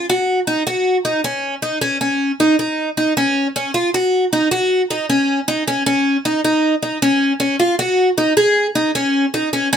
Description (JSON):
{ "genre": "progressive instrumental, progressive", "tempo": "156 BPM", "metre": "5/4", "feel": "straight", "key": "unclear", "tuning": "A4 = 439 Hz", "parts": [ { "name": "picked twelve-string acoustic guitar", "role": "solo", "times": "0.0-9.8 s", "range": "Db4 to Ab4", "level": "-15 LUFS", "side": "equal", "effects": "none" } ], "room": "light reverb", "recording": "minimal, uncompressed stereo recording", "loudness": "-15 LUFS", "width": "side -8 dB against mid", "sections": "0.0-9.8 A section", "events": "none", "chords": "none", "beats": "| 0.09 0.47 0.86 1.24 1.63 | 2.01 2.40 2.78 3.17 3.55 | 3.94 4.32 4.71 5.09 5.48 | 5.86 6.25 6.63 7.02 7.40 | 7.79 8.17 8.56 8.95 9.33 | 9.71" }